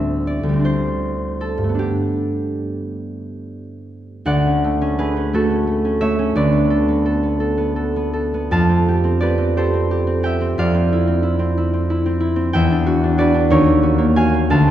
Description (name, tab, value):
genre	classical, solo harp piece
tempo	44-63 BPM (dotted quarters)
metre	6/8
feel	rubato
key	G major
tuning	A4 = 439 Hz
part	concert harp	solo	0.0-14.7 s	D2 to A5	-16 LUFS	equal	none
room	wet concert hall reverb, RT60 2.0 s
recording	heard from further back in the room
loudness	-16 LUFS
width	side -11 dB against mid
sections	0.0-4.3 A section; 4.3-14.7 B section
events	none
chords	0.0 D9sus4; 1.8 Gadd9; 4.3 Dmaj7; 6.4 Bm9/D; 8.5 Fmaj9; 10.6 Dm9/F; 12.5 Em9; 13.5 Ebm9